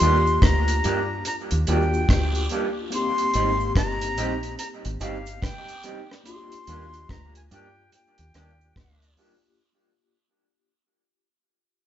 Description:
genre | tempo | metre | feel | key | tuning
lovers rock reggae | 72 BPM | 4/4 | swing 62% on 16ths | Eb major | A4 = 440 Hz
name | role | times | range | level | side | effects
breathy bright concert flute | melody | 0.0-9.1 s | F5 to C6 | -27 LUFS | equal | none
mellow tine electric piano | accompaniment | 0.0-9.6 s | Bb3 to G4 | -30 LUFS | left 4 dB | medium tremolo, tape echo
electric guitar through a small old amp | stabs | 0.0-9.3 s | G3 to G4 | -30 LUFS | right 3 dB | tape echo
deep dub fingered electric bass | bass | 0.0-9.1 s | G1 to G2 | -25 LUFS | equal | none
deep reggae drum kit | drums | 0.0-9.4 s | hi-hat, kick drum, rim click | -24 LUFS | equal | none
cabasa and guiro | percussion | 0.0-9.4 s | none | -42 LUFS | right 1 dB | tape echo
room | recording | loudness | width
moderate large studio reverb, RT60 1.0 s | band playing live in one room, nothing above 7.7 kHz | -21 LUFS | side -11 dB against mid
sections
0.0-9.6 A section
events
fade-out 0.0-9.6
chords
0.0 Ebmaj7; 2.9 Abmaj7; 6.3 Ebmaj7

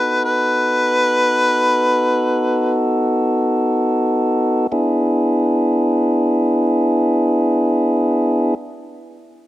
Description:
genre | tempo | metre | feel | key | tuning
blues | free time | none | none | unclear | A4 = 441 Hz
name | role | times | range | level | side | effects
mellow harmonica | melody | 0.0-2.8 s | B4 | -16 LUFS | left 1 dB | overdrive
tonewheel organ | sustained chords | 0.0-8.5 s | B3 to A4 | -16 LUFS | equal | stopped rotary speaker
room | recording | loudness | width
moderate lush hall reverb, RT60 2.7 s | rough home demo mix | -14 LUFS | side -15 dB against mid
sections
0.0-4.7 A section; 4.7-9.5 B section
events
slowing down 0.0-4.7; harmonica solo 0.0-4.7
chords
0.0 B7; 4.7 E7

